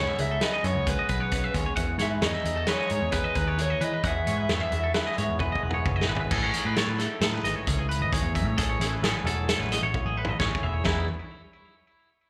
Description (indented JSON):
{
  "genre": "math rock and midwest emo",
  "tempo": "132 BPM",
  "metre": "5/4",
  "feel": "straight",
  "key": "E major",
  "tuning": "A4 = 440 Hz",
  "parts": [
    { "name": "raw garage guitar", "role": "melody", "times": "0.0-5.8 s", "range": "B4 to E5", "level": "-33 LUFS", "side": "equal", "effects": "overdrive, slapback echo, digital delay" },
    { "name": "twangy electric guitar", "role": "accompaniment", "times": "0.0-11.1 s", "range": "A2 to B4", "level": "-37 LUFS", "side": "equal", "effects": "slapback echo" },
    { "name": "twangy electric guitar", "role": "arpeggios", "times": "0.0-11.1 s", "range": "E4 to F#5", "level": "-34 LUFS", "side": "equal", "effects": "slapback echo, digital delay" },
    { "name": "picked electric bass", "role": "bass", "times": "0.0-11.1 s", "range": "E1 to E3", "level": "-31 LUFS", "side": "equal", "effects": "none" },
    { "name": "loose indie drum kit", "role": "drums", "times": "0.2-11.0 s", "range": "crash cymbal, hi-hat, kick drum, snare drum, toms", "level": "-31 LUFS", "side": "equal", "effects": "none" }
  ],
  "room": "small room ambience",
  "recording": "live gig heard through the venue's PA, club reverb",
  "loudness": "-26 LUFS",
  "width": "mono",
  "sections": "0.0-6.3 A section; 6.3-10.9 B section; 10.9-12.3 C section",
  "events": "drum fill 5.4-6.3, 9.9-10.9",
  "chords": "0.0 C#m9; 1.8 Emaj9; 6.3 Amaj9#11; 8.6 F#m9; 10.9 Emaj9",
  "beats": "0.42 0.88 1.33 | 1.78 2.23 2.69 3.14 3.60 | 4.05 4.50 4.96 5.41 5.86 | 6.32 6.77 7.22 7.68 8.13 | 8.59 9.04 9.49 9.94 10.40 | 10.85"
}